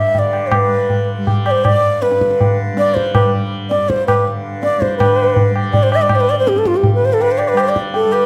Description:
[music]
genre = indian classical, Hindustani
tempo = 162 BPM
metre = 3/4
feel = straight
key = unclear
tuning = A4 = 440 Hz
[part]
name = breathy reedy bansuri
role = melody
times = 0.0-8.3 s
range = F4 to E5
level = -17 LUFS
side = equal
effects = none
[part]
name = tanpura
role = drone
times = 0.0-8.3 s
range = G2 to G3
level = -26 LUFS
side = equal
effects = none
[part]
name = tabla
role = percussion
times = 0.1-8.3 s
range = none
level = -19 LUFS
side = equal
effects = none
[sound]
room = moderate recital hall reverb, RT60 1.7 s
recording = none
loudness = -15 LUFS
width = mono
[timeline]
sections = 0.0-5.0 A section; 5.0-8.3 B section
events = none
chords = none

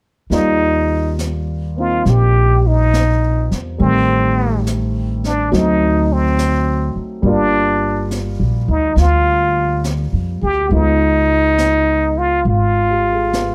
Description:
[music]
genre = jazz ballad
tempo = 69 BPM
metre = 4/4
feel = swing 66% on 8ths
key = Eb major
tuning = A4 = 443 Hz
[part]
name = trumpet with plunger mute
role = melody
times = 0.3-13.5 s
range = C4 to G4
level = -18 LUFS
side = equal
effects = none
[part]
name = warm baby grand piano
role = accompaniment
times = 0.3-13.5 s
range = Eb3 to D5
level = -24 LUFS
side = equal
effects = none
[part]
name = upright bass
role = bass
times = 0.3-13.5 s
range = G1 to F2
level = -20 LUFS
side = equal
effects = none
[part]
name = jazz brush drum kit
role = drums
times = 0.3-13.5 s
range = brushed snare drum, hi-hat, snare drum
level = -30 LUFS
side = equal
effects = none
[sound]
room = light reverb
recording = dark, warm production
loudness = -16 LUFS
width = mono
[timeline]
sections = 0.3-13.5 A section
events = none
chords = 0.3 Ebmaj9; 3.8 Am7b5; 5.5 D7b9; 7.2 Gm7; 10.7 Db9

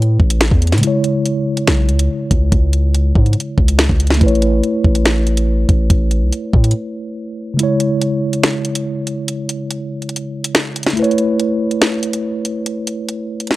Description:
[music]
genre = hip hop, drill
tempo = 142 BPM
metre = 4/4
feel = half-time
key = C# minor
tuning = A4 = 443 Hz
[part]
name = mellow tine electric piano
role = accompaniment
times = 0.0-13.6 s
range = C#3 to C#5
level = -18 LUFS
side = equal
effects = medium stereo tremolo, low-pass filter
[part]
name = long sustained 808-style bass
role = bass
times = 0.0-6.7 s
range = A1 to A2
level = -14 LUFS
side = equal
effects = none
[part]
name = drill drum kit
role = drums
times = 0.0-13.6 s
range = finger snaps, hi-hat, kick drum, snare drum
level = -15 LUFS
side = equal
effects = none
[sound]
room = little or no reverb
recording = dry, gritty hardware recording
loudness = -14 LUFS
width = side -17 dB against mid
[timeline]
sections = 0.0-13.6 A section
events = filter sweep on tine electric piano 0.0-7.6; break 0.8-1.7, 6.7-7.6, 7.6-13.6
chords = 0.0 Aadd9; 0.8 C#m; 4.2 Aadd9; 7.6 C#m; 11.0 Aadd9

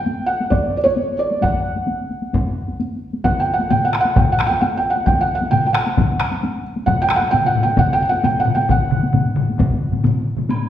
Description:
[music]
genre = japanese traditional, taiko drum ensemble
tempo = 132 BPM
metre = 4/4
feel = straight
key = unclear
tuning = A4 = 438 Hz
[part]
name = felt-muted upright piano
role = melody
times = 0.0-10.0 s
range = C#5 to G5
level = -19 LUFS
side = right 1 dB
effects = none
[part]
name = taiko ensemble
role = percussion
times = 0.1-10.6 s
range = none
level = -24 LUFS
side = left 1 dB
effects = none
[part]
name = taiko ensemble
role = percussion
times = 0.5-9.7 s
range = none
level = -21 LUFS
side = left 1 dB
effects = none
[part]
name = taiko ensemble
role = percussion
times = 3.7-10.6 s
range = none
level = -22 LUFS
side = left 4 dB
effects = none
[part]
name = taiko ensemble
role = percussion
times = 3.7-10.5 s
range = none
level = -21 LUFS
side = right 1 dB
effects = none
[part]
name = woodblock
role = percussion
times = 10.5-10.6 s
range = none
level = -29 LUFS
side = right 2 dB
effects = none
[sound]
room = wet recital hall reverb, RT60 1.3 s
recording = recorded in a church or concert hall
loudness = -16 LUFS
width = side -11 dB against mid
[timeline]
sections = 0.0-10.5 A section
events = none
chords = none

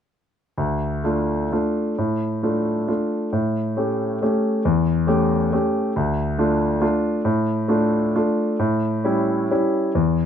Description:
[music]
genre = classical, piano waltz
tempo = 125-145 BPM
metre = 3/4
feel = rubato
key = D minor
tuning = A4 = 438 Hz
[part]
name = warm grand piano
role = solo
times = 0.6-10.3 s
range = D2 to G4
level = -19 LUFS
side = equal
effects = none
[sound]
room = moderate studio ambience, RT60 0.5 s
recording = dark, warm production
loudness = -19 LUFS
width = side -8 dB against mid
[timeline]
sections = 0.6-10.3 A section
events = none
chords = 0.6 Dm; 3.3 A7; 6.0 Dm; 8.6 A7

